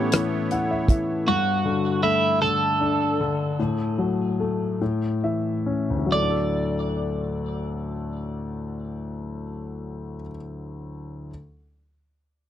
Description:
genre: six-eight pop ballad.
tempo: 45-53 BPM (dotted quarters).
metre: 6/8.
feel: straight.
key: D major.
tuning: A4 = 440 Hz.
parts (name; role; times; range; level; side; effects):
twelve-string electric guitar; melody; 0.0-10.3 s; E4 to D5; -25 LUFS; right 3 dB; lush chorus, tape echo.
clear concert grand piano; accompaniment; 0.0-11.3 s; D2 to F#5; -25 LUFS; left 3 dB; none.
sweeping resonant pad; sustained chords; 0.0-1.2 s; B3 to C#5; -32 LUFS; right 4 dB; chorus.
damped 70s drum kit; drums; 0.1-1.1 s; hi-hat, kick drum, rim click; -19 LUFS; equal; none.
room: light reverb.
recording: dry, close 1970s-style studio recording.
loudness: -22 LUFS.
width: side -11 dB against mid.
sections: 0.0-6.1 A section; 6.1-8.8 B section.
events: grand piano fill 0.1-1.3, 4.8-6.1; slowing down 1.3-6.1.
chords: 0.0 Aadd9; 1.3 Gsus2; 3.6 F#m/A; 4.8 A; 6.1 D.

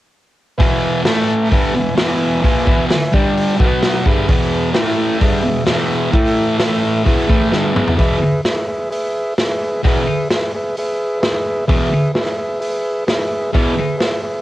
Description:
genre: garage rock duo or trio.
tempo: 130 BPM.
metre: 4/4.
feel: straight.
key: E mixolydian.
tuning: A4 = 443 Hz.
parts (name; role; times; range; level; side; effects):
overdriven combo organ; sustained chords; 0.6-14.4 s; E4 to A5; -20 LUFS; equal; cassette tape.
thick fuzz guitar; riff; 0.6-13.7 s; E2 to B3; -17 LUFS; equal; distortion, cassette tape.
vintage drum kit; drums; 0.6-14.1 s; hi-hat, kick drum, snare drum, toms; -18 LUFS; equal; cassette tape.
room: studio reverb.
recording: home recording on cassette.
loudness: -14 LUFS.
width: side -15 dB against mid.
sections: 0.6-8.0 A section; 8.0-14.4 B section.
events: transistor combo organ fill 3.6-4.3; drum fill 7.5-8.0.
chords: 0.6 E; 1.1 A5; 1.5 E; 3.1 G5; 3.6 B5; 4.1 E; 4.7 A5; 5.2 E; 6.1 A5; 7.1 E.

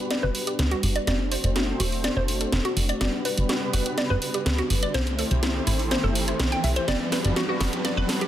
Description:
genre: progressive house.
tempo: 124 BPM.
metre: 4/4.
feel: straight.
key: G major.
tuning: A4 = 445 Hz.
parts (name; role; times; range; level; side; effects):
filtered supersaw swell; sustained chords; 0.0-8.3 s; G3 to C5; -30 LUFS; equal; phaser, low-pass filter.
riser; sound effects; 1.9-8.3 s; none; -36 LUFS; right 1 dB; none.
glassy wavetable pluck; arpeggios; 0.1-8.3 s; E4 to G5; -30 LUFS; equal; chorus, phaser, digital delay.
house drum kit; drums; 0.1-8.3 s; hi-hat, snare drum; -27 LUFS; equal; overdrive.
plucky analog bass; bass; 0.2-8.0 s; E1 to D2; -25 LUFS; equal; tube saturation.
room: light reverb.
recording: dense, heavily limited modern master.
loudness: -22 LUFS.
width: side -12 dB against mid.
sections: 0.0-8.3 A section.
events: build-up 0.0-8.3; drum fill 0.0-8.3; filter sweep on synth arpeggio sound 0.0-8.3; filter sweep on supersaw synth 0.0-8.3; riser 1.9-8.3.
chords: 0.0 Gmaj7; 1.1 D7; 3.0 Gmaj7; 4.9 C6; 6.9 Gmaj7.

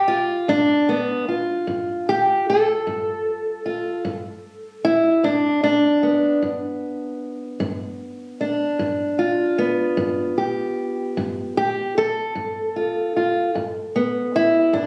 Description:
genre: acoustic country blues, solo or duo.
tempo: 51 BPM (dotted quarters).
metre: 12/8.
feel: straight.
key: G mixolydian.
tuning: A4 = 440 Hz.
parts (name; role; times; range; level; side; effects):
fingerpicked old ladder-braced acoustic guitar; solo; 0.0-14.9 s; G2 to A4; -22 LUFS; equal; none.
room: light reverb.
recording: recorded on a phone in the room, studio reverb, compression.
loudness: -21 LUFS.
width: mono.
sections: 0.0-14.9 A section.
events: steel-string acoustic guitar solo 0.0-14.9.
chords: 0.0 G7.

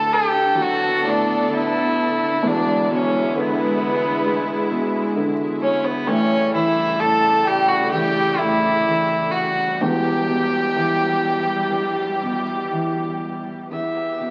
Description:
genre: celtic folk, Celtic slow air.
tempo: 59-67 BPM.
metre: 4/4.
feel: rubato.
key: E dorian.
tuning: A4 = 440 Hz.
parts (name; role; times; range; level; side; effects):
clear fiddle; melody; 0.0-14.3 s; B3 to E5; -23 LUFS; equal; none.
dark fiddle; second line; 0.0-12.7 s; B4 to A5; -28 LUFS; equal; none.
dark upright piano; accompaniment; 0.0-14.3 s; D1 to G#3; -26 LUFS; equal; none.
rich studio string section; sustained chords; 0.0-14.3 s; C#3 to A4; -28 LUFS; equal; none.
room: wet large studio reverb, RT60 1.4 s.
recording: very old 78 rpm record, vinyl crackle.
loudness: -20 LUFS.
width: mono.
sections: 0.0-13.7 A section.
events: none.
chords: 0.0 D; 2.5 E7; 6.1 A7; 9.8 Em.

